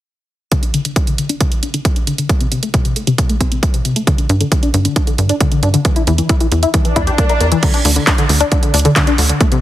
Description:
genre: uplifting trance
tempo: 135 BPM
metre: 4/4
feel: straight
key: unclear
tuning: A4 = 440 Hz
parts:
  - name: tight sequenced synth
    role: arpeggios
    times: 0.5-9.6 s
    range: C3 to Bb4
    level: -17 LUFS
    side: left 2 dB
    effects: chorus, phaser, sidechain pumping, tape echo
  - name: electronic kick drum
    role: drums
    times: 0.5-9.5 s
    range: none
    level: -15 LUFS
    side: equal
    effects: overdrive
  - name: house drum kit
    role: drums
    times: 0.5-9.6 s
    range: crash cymbal, handclaps, hi-hat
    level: -19 LUFS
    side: right 2 dB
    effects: overdrive, sidechain pumping on hats, sidechain pumping on cymbals
  - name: tight sequencer bass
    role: bass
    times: 4.3-9.3 s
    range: D2 to G2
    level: -14 LUFS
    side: equal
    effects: sidechain pumping
  - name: swell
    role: sound effects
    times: 6.9-7.6 s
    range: none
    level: -21 LUFS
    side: equal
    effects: none
room: light reverb, digital ambience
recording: heavily compressed radio sound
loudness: -12 LUFS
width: side -13 dB against mid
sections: 0.5-7.6 A section; 7.6-9.6 B section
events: filter sweep on synth arpeggio sound 0.5-7.6; swell 6.9-7.6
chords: 0.5 N.C.; 2.3 Am/C; 4.1 G5; 5.8 E(b5, no3); 7.6 N.C.

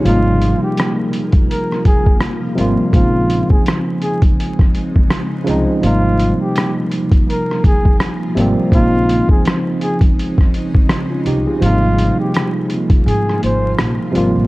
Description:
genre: lo-fi hip hop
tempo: 83 BPM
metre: 4/4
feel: swing 57% on 16ths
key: Bb dorian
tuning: A4 = 439 Hz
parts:
  - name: tine electric piano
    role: accompaniment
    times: 0.0-14.5 s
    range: C3 to Ab4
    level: -18 LUFS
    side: right 1 dB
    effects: medium stereo tremolo
  - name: granular cloud pad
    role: sustained chords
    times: 0.0-14.5 s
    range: C3 to F4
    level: -26 LUFS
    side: left 1 dB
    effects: built-in reverb
  - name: breathy flugelhorn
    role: melody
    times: 0.1-13.8 s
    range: F4 to C5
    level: -21 LUFS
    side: equal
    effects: analog delay
  - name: upright bass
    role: bass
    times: 0.1-14.5 s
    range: Ab1 to Ab2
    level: -17 LUFS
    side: equal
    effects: none
  - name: lo-fi sampler-style drum kit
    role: drums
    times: 0.1-14.3 s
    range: hi-hat, kick drum, rim click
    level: -14 LUFS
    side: equal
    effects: overdrive
room: light reverb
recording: dark, warm production, vinyl crackle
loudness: -12 LUFS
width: side -20 dB against mid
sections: 0.0-2.9 A section; 2.9-14.5 B section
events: kick muted 13.1-14.5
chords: 0.0 Abmaj13; 2.9 Bbm11; 5.8 Abmaj13; 8.7 Bbm11; 11.6 Abmaj13

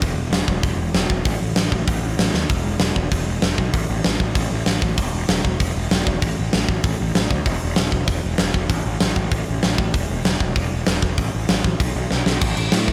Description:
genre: punk rock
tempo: 194 BPM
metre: 4/4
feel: straight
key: unclear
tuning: A4 = 440 Hz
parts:
  - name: fuzz picked electric bass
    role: bass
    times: 0.0-12.9 s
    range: E1 to A2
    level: -25 LUFS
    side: equal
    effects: overdrive
  - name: big rock drum kit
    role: drums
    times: 0.0-12.9 s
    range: crash cymbal, hi-hat, kick drum, snare drum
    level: -22 LUFS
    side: equal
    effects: none
room: light reverb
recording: none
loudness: -21 LUFS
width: mono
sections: 0.0-12.4 A section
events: drum fill 2.3, 12.1-12.4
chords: none

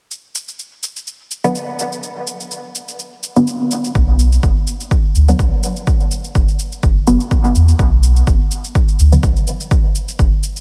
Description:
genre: dub techno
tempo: 125 BPM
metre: 4/4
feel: swing 55% on 16ths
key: B minor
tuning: A4 = 440 Hz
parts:
  - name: cabasa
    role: drums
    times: 0.1-10.6 s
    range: none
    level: -29 LUFS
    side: equal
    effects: overdrive, small room ambience
  - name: filtered dub chord stab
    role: stabs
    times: 1.4-9.2 s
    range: D3 to B3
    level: -21 LUFS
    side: equal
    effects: chorus, phaser, sidechain pumping, dub echo
  - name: soft dub sub bass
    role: bass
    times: 4.0-10.3 s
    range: F#1 to E2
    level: -14 LUFS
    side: equal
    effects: sidechain pumping
  - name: electronic kick drum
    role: drums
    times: 4.0-10.3 s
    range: none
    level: -17 LUFS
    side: equal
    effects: overdrive, small room ambience
room: light reverb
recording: none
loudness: -15 LUFS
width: mono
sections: 0.1-7.8 A section; 7.8-10.6 B section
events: filter sweep on synth stab 0.1-7.8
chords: 0.1 Bm

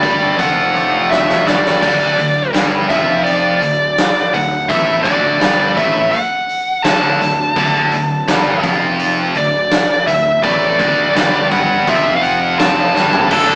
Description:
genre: quiet-loud alternative rock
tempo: 84 BPM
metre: 4/4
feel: straight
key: unclear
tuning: A4 = 440 Hz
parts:
  - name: nasal lead guitar with a parked wah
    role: melody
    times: 0.0-13.6 s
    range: A4 to A5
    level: -18 LUFS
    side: equal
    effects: overdrive, slapback echo
  - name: twangy electric guitar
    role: arpeggios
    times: 0.0-1.8 s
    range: D2 to F#4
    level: -25 LUFS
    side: equal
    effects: none
  - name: heavy high-gain guitar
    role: riff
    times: 0.0-13.6 s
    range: D2 to A3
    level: -23 LUFS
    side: equal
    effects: distortion
  - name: scooped high-gain guitar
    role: riff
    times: 0.0-13.6 s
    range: D2 to A3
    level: -21 LUFS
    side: equal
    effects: distortion
  - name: fuzz picked electric bass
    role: bass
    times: 0.0-13.6 s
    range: D1 to A1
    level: -27 LUFS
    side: equal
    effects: overdrive
  - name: huge arena drum kit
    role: drums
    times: 0.0-13.5 s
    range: crash cymbal, hi-hat, kick drum, snare drum, splash cymbal, toms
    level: -21 LUFS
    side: equal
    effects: none
room: moderate stone room reverb, RT60 1.1 s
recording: rough rehearsal-room recording, small speaker sound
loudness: -14 LUFS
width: mono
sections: 0.0-13.3 A section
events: lead electric guitar solo 0.0-13.3; drum fill 1.1-1.8, 13.0-13.3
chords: 0.0 D5

